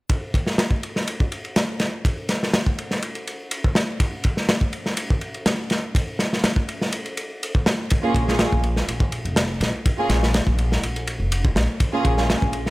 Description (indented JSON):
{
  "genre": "breakbeat, breaks",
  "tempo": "123 BPM",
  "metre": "4/4",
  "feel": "straight",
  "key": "Bb minor",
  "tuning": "A4 = 440 Hz",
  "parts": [
    { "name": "crunchy breakbeat drum kit", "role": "drums", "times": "0.1-12.7 s", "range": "kick drum, ride cymbal, snare drum", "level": "-21 LUFS", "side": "equal", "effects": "none" },
    { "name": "dark chamber string section", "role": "stabs", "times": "8.0-12.3 s", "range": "Bb3 to Ab4", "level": "-24 LUFS", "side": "right 1 dB", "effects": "vintage 12-bit sampler grit, tape echo" },
    { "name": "upright bass", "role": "bass", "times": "8.1-12.7 s", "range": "F1 to Bb1", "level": "-23 LUFS", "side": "equal", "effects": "none" }
  ],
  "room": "small room reverb",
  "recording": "none",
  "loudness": "-20 LUFS",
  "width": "side -20 dB against mid",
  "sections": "0.1-12.7 A section",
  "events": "none",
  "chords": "0.1 Bb5",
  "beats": "| 0.10 0.59 1.07 1.56 | 2.05 2.54 3.03 3.51 | 4.00 4.49 4.98 5.46 | 5.95 6.44 6.93 7.42 | 7.90 8.39 8.88 9.37 | 9.86 10.34 10.83 11.32 | 11.81 12.29"
}